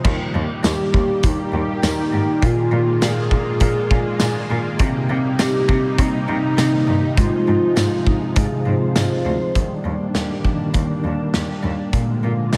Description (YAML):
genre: dream pop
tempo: 101 BPM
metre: 4/4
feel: straight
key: Eb major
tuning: A4 = 440 Hz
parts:
  - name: string machine, cellos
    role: sustained chords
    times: 0.0-12.6 s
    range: C3 to G4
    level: -25 LUFS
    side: equal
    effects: ensemble chorus
  - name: mellow electric guitar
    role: arpeggios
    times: 0.0-12.6 s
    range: Bb2 to C5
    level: -28 LUFS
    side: equal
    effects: ensemble chorus, analog delay
  - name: warm cello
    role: bass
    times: 0.0-12.6 s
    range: D2 to C3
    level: -26 LUFS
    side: equal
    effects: none
  - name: loose indie drum kit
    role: drums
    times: 0.0-12.6 s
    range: crash cymbal, hi-hat, kick drum, snare drum, tambourine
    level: -23 LUFS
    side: equal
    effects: none
  - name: vibraphone with soft mallets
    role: texture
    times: 0.0-0.3, 4.8-9.8 s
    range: C4 to C5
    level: -32 LUFS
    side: equal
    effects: none
  - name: hollow clarinet-like synth lead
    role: melody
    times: 0.7-8.9 s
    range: Eb4 to Ab4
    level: -25 LUFS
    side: equal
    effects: chorus, analog delay
room: moderate lush hall reverb, RT60 2.3 s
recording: dreamy mix soaked in reverb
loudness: -19 LUFS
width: mono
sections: 0.0-9.6 A section; 9.6-12.6 B section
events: none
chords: 0.0 Ebmaj7; 2.4 Bb7; 4.8 Cm7; 7.2 Ab6; 9.6 Ebmaj7; 11.9 Bb7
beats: | 0.05 0.64 1.24 1.83 | 2.42 3.02 3.61 4.21 | 4.80 5.39 5.99 6.58 | 7.18 7.77 8.36 8.96 | 9.55 10.15 10.74 11.33 | 11.93 12.52